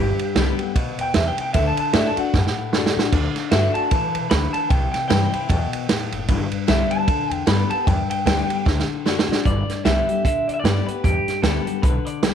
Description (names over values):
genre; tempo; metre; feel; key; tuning
rockabilly; 152 BPM; 4/4; swing 58% on 8ths; G major; A4 = 441 Hz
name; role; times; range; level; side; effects
electric guitar through a small old amp; melody; 0.0-12.3 s; G4 to B5; -24 LUFS; right 1 dB; tape echo
picked steel-string acoustic guitar; accompaniment; 0.0-12.3 s; G2 to G4; -25 LUFS; left 12 dB; none
upright bass; bass; 0.0-12.3 s; F#1 to B2; -24 LUFS; equal; none
vintage drum kit; drums; 0.2-12.3 s; crash cymbal, hi-hat, kick drum, ride cymbal, snare drum; -22 LUFS; right 3 dB; none
room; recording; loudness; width
light reverb, studio ambience; 1960s-style stereo; -18 LUFS; side -8 dB against mid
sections
0.0-9.4 A section; 9.4-12.3 B section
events
clean electric guitar solo 0.0-9.4; drum fill 2.3-3.1, 8.7-9.4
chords
0.0 G; 1.5 D; 4.7 C; 6.3 G; 8.7 D; 9.4 G